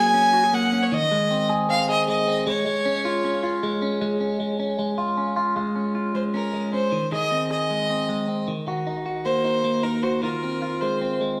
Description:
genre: indie pop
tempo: 154 BPM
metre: 4/4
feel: straight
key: Db major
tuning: A4 = 441 Hz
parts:
  - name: clear fiddle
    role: melody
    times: 0.0-3.8, 6.2-11.2 s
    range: Bb4 to Ab5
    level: -25 LUFS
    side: equal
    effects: none
  - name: clean electric guitar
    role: arpeggios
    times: 0.0-11.4 s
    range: Eb3 to Ab4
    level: -26 LUFS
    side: equal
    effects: phaser, digital delay
room: wet large studio reverb, RT60 0.9 s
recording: band playing live in one room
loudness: -23 LUFS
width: mono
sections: 0.0-4.0 A section; 4.0-5.6 B section; 5.6-11.4 C section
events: none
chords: 0.0 Gbadd9; 0.9 Ab; 2.5 Db; 6.9 Ab; 8.5 Ebm; 10.2 Fm7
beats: 0.14 0.53 | 0.92 1.30 1.69 2.08 | 2.46 2.85 3.24 3.62 | 4.01 4.40 4.79 5.18 | 5.56 5.95 6.34 6.73 | 7.12 7.51 7.90 8.29 | 8.68 9.06 9.45 9.84 | 10.23 10.62 11.01 11.40

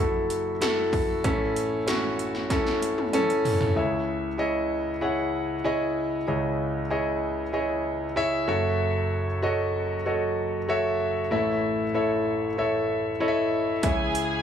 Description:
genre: piano-driven pop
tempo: 95 BPM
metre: 4/4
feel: straight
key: C# minor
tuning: A4 = 440 Hz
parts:
  - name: warm concert grand piano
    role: accompaniment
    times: 0.0-14.4 s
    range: F#1 to F#5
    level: -24 LUFS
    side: equal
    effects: slapback echo
  - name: 80s electronic pad drums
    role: drums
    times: 0.3-3.8, 13.8-14.3 s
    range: hi-hat, kick drum, snare drum, toms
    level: -28 LUFS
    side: right 1 dB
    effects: gated reverb on snare and toms, overdrive
  - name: warm studio violin section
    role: second line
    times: 13.8-14.4 s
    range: G#4 to G#5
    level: -28 LUFS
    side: right 2 dB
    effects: slapback echo
room: light reverb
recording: live gig heard through the venue's PA, club reverb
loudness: -23 LUFS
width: side -8 dB against mid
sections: 0.0-3.8 A section; 3.8-14.4 B section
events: drum fill 2.5-3.8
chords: 0.0 F#m7; 1.2 A; 3.8 C#m; 8.5 F#m7; 11.3 A; 13.8 C#m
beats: 0.61 | 1.24 1.87 2.50 3.13 | 3.76 4.39 5.02 5.65 | 6.28 6.91 7.54 8.17 | 8.80 9.43 10.06 10.69 | 11.32 11.95 12.58 13.21 | 13.84

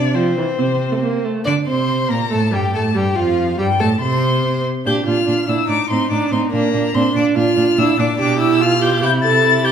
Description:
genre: quick classical-period movement for string quartet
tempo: 143 BPM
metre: 4/4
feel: straight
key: unclear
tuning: A4 = 438 Hz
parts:
  - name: rich violin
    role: melody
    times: 0.0-9.7 s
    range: C5 to A6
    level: -21 LUFS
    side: left 6 dB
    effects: none
  - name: rich violin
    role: second line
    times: 0.0-9.7 s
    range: C4 to D5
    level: -22 LUFS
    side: equal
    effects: none
  - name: rich cello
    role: bass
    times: 0.0-9.7 s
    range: F2 to D3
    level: -20 LUFS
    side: right 2 dB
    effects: none
  - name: warm viola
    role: accompaniment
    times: 0.1-9.7 s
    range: E3 to A4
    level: -19 LUFS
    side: right 4 dB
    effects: none
room: wet recital hall reverb, RT60 1.4 s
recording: minimal, uncompressed stereo recording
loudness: -14 LUFS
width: side -8 dB against mid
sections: 0.0-1.5 A section; 1.5-9.7 B section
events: none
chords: 0.0 F5; 0.6 Am/C; 1.5 Bbsus2; 2.3 Gsus2; 3.2 F; 4.9 Bb; 5.7 Cm69/A; 6.5 Bb; 8.2 G7/B; 9.0 C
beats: 0.14 0.58 1.02 | 1.46 1.89 2.31 2.74 | 3.17 3.59 4.01 4.43 | 4.86 5.28 5.69 6.11 | 6.53 6.94 7.36 7.78 | 8.19 8.60 9.02 9.43

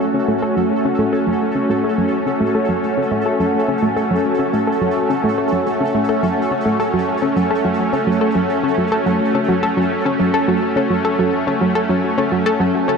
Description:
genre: ambient, sequencer-driven space music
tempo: 106 BPM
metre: 4/4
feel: straight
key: F# minor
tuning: A4 = 440 Hz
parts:
  - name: lush unison pad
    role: sustained chords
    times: 0.0-13.0 s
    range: A3 to F#4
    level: -18 LUFS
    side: equal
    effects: chorus, phaser
  - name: pulsing gated texture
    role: texture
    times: 0.0-13.0 s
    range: A4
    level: -26 LUFS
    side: right 2 dB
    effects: chorus, built-in reverb
  - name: analog pluck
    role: riff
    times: 0.1-13.0 s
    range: F#3 to A4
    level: -19 LUFS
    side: equal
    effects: chorus, ping-pong delay
room: wet huge ambient reverb, RT60 7.8 s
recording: none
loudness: -15 LUFS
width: side -5 dB against mid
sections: 0.0-13.0 A section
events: filter sweep on synth arpeggio sound 0.0-13.0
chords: 0.0 F#m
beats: | 0.00 0.57 1.14 1.70 | 2.27 2.83 3.40 3.96 | 4.53 5.10 5.66 6.23 | 6.79 7.36 7.93 8.49 | 9.06 9.62 10.19 10.76 | 11.32 11.89 12.46

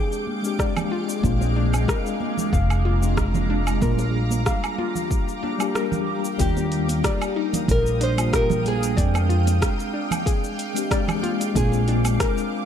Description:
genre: sunset chillout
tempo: 93 BPM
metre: 4/4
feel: swing 53% on 16ths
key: unclear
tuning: A4 = 440 Hz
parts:
  - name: mellow tine electric piano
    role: accompaniment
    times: 0.0-12.7 s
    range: G3 to G5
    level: -28 LUFS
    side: moving between left 9 dB and right 6 dB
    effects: medium stereo tremolo, auto-pan, ping-pong delay
  - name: shimmering ambient pad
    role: sustained chords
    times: 0.0-12.7 s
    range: Ab3 to Eb6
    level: -30 LUFS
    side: equal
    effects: chorus, built-in reverb, phaser
  - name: soft round pluck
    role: arpeggios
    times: 0.0-12.5 s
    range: D4 to F5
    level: -31 LUFS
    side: left 6 dB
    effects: chorus, ping-pong delay
  - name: deep house drum kit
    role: drums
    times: 0.1-12.5 s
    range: cabasa, hi-hat, rim click, woodblock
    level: -30 LUFS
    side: right 2 dB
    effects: none
  - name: congas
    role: percussion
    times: 0.3-12.2 s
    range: none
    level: -31 LUFS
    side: right 6 dB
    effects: none
  - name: electronic kick drum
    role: drums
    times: 0.6-12.3 s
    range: none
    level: -24 LUFS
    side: equal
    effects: none
  - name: upright bass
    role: bass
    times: 1.2-12.2 s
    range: F1 to F2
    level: -22 LUFS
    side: equal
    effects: none
  - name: nylon-string guitar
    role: melody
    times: 6.4-12.7 s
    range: G4 to C5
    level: -28 LUFS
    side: right 1 dB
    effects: digital delay
room: light reverb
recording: dark, warm production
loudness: -20 LUFS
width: side -9 dB against mid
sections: 0.0-6.4 A section; 6.4-12.7 B section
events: filter sweep on tine electric piano 0.0-6.4; kick drops out 5.8-6.4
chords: 0.0 Fm69; 1.2 Bb7; 3.8 Gm7/Bb; 6.4 Ebmaj9; 9.0 Fm69; 11.6 Bb7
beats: 0.59 | 1.24 1.88 2.53 3.17 | 3.82 4.46 5.11 5.75 | 6.40 7.04 7.69 8.33 | 8.98 9.62 10.27 10.91 | 11.56 12.21

